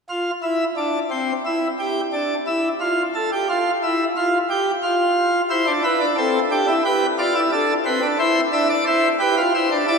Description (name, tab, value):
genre	classical, baroque-style 3-part fugue for pipe organ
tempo	89 BPM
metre	4/4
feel	straight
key	unclear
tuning	A4 = 440 Hz
part	pipe organ, plenum	solo	0.1-10.0 s	C4 to E5	-18 LUFS	equal	none
room	wet cathedral reverb, RT60 4.6 s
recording	recorded in a church or concert hall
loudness	-18 LUFS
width	side -5 dB against mid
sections	0.1-10.0 A section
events	none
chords	0.1 N.C.; 5.5 C; 6.9 G7; 8.2 C